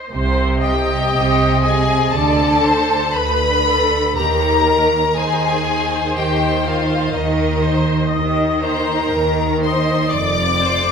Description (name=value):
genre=classical, slow romantic movement for string orchestra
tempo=60 BPM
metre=4/4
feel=rubato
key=unclear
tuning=A4 = 443 Hz
part: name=rich studio violin section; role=melody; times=0.0-10.9 s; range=Eb5 to D6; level=-20 LUFS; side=left 5 dB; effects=none
part: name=rich chamber viola section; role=accompaniment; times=0.0-10.9 s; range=G4 to Eb5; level=-22 LUFS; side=equal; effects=none
part: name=clear chamber double bass section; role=bass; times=0.1-10.9 s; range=F1 to Eb2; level=-22 LUFS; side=right 2 dB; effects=none
part: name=rich symphonic cello section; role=bass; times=0.1-10.9 s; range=F2 to Eb3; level=-20 LUFS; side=right 2 dB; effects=none
part: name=rich chamber violin section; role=second line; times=0.6-10.9 s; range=Eb4 to D5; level=-22 LUFS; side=left 2 dB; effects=none
room=wet scoring stage reverb, RT60 2.1 s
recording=minimal, uncompressed stereo recording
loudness=-14 LUFS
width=side -6 dB against mid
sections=0.1-10.9 A section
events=none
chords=0.1 Cm; 2.1 Bm7/D; 4.1 Eb5; 10.1 Csus4/F